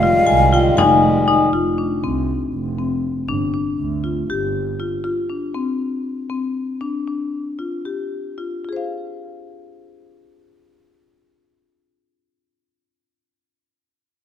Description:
contemporary instrumental, chamber music in an uneven meter; 224-240 BPM (eighths); 7/8; straight; F dorian; A4 = 439 Hz
mellow hollow concert flute; melody; 0.0-1.0 s; F5; -18 LUFS; equal
pedal harmonium; sustained chords; 0.0-1.5 s; Eb3 to Ab3; -21 LUFS; left 1 dB
marimba with medium hard mallets; arpeggios; 0.0-13.2 s; C4 to F5; -22 LUFS; left 3 dB
dark double bass; bass; 0.0-4.9 s; F1 to D2; -22 LUFS; right 5 dB
vibraphone with medium hard mallets; second line; 0.3-1.5 s; G5 to Ab5; -18 LUFS; left 5 dB
frame drum; percussion; 0.8-1.4 s; -27 LUFS; left 3 dB
moderate concert hall reverb, RT60 2.3 s; close, detailed microphones; -18 LUFS; side -9 dB against mid
0.0-1.5 A section; 1.5-8.6 B section; 8.6-12.4 C section
slowing down 5.0-8.6
0.0 Fm9; 1.5 F5; 3.3 G5; 5.0 N.C.; 6.8 G5; 8.6 Fm

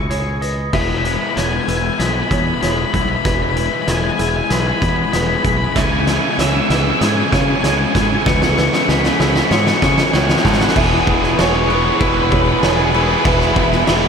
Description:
post-rock; 96 BPM; 4/4; straight; E major; A4 = 440 Hz
octave-fuzz lead guitar; melody; 0.0-14.1 s; E4 to C#6; -21 LUFS; left 3 dB; distortion, ping-pong delay
dark chamber string section; sustained chords; 0.0-14.1 s; E3 to B5; -26 LUFS; left 1 dB
felt-muted upright piano; arpeggios; 0.0-14.1 s; G#4 to A5; -27 LUFS; right 4 dB; ping-pong delay
twangy electric guitar; arpeggios; 0.0-14.1 s; C#3 to D#5; -27 LUFS; equal; wide subtle chorus, ping-pong delay
growling fingered electric bass; bass; 0.0-14.1 s; E1 to C#3; -20 LUFS; equal; overdrive
oversized low-tuned drum kit; drums; 0.1-14.0 s; crash cymbal, hi-hat, kick drum, snare drum; -19 LUFS; equal
distorted electric guitar; riff; 0.7-14.1 s; C#3 to E4; -22 LUFS; left 10 dB; distortion
distorted electric guitar; riff; 5.8-14.1 s; E2 to E3; -20 LUFS; right 11 dB; distortion
moderate lush hall reverb, RT60 2.7 s; dreamy mix soaked in reverb; -13 LUFS; side -6 dB against mid
0.7-10.8 A section; 10.8-14.1 B section
build-up 0.7-10.8; drum fill 0.7-10.8
0.0 C#madd9; 0.7 E; 5.8 C#m; 10.8 E

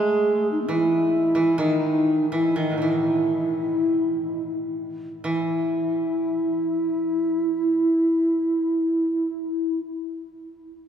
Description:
japanese traditional, Japanese chamber music; 42-69 BPM; 2/4; rubato; E ryukyu; A4 = 440 Hz
bass ocarina; melody; 0.0-9.8 s; A3 to G#4; -21 LUFS; equal
koto; second line; 0.0-9.8 s; A2 to G#3; -29 LUFS; right 2 dB
wet cathedral reverb, RT60 4.4 s; recorded in a church or concert hall; -20 LUFS; side -8 dB against mid
0.0-5.2 A section; 5.2-10.8 B section
slowing down 0.9-5.2

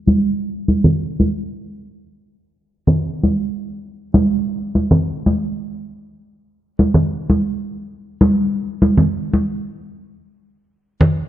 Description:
house; 118 BPM; 4/4; swing 59% on 16ths
congas; percussion; 0.1-11.1 s; -15 LUFS; equal
moderate echo chamber reverb, RT60 1.8 s; low-pass filter; -16 LUFS; side -12 dB against mid
0.0-11.3 A section
filter sweep 0.0-11.3

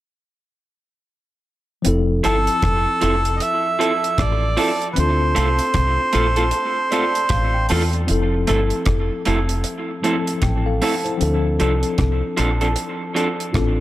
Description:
lovers rock reggae; 77 BPM; 4/4; swing 61% on 16ths; F major; A4 = 440 Hz
tine electric piano; accompaniment; 1.8-13.8 s; E3 to A5; -25 LUFS; left 3 dB; medium stereo tremolo, tape echo
deep reggae drum kit; drums; 1.8-13.8 s; hi-hat, kick drum, rim click; -25 LUFS; equal; tape echo
deep dub fingered electric bass; bass; 1.9-13.8 s; F1 to E2; -20 LUFS; equal; tube saturation
melodica; melody; 2.2-7.7 s; A4 to E5; -20 LUFS; right 2 dB; tape echo
electric guitar through a small old amp; stabs; 2.2-13.3 s; F3 to A4; -23 LUFS; right 2 dB; spring reverb, tape echo
light reverb, studio reverb; -17 LUFS; side -15 dB against mid
1.8-13.8 A section
tine electric piano fill 6.5-8.1
1.8 Fmaj7; 5.0 Dm7; 8.1 Fmaj7; 11.2 Dm7

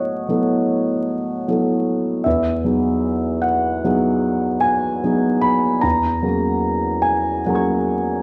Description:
classical, impressionist solo piano; 50 BPM (dotted quarters); 9/8; rubato; A4 = 436 Hz
clear grand piano; solo; 0.0-8.2 s; E2 to G#6; -19 LUFS; equal
wet recital hall reverb, RT60 1.6 s; vinyl crackle; -19 LUFS; mono
0.0-8.2 A section
0.0 A69; 2.3 Emaj9; 5.8 G#9sus4/E

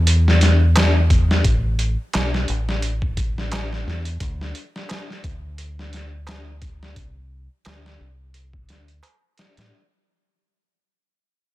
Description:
trip hop; 87 BPM; 4/4; swing 56% on 16ths; A minor; A4 = 440 Hz
deep dub fingered electric bass; bass; 0.0-9.7 s; A1 to A2; -20 LUFS; equal
trip hop sampler-style drum kit; drums; 0.1-9.7 s; hi-hat, kick drum, snare drum; -22 LUFS; equal
darbuka; percussion; 0.8-9.2 s; -30 LUFS; right 4 dB
digital ambience; -17 LUFS; side -17 dB against mid
0.0-9.7 A section
fade-out 0.0-9.7

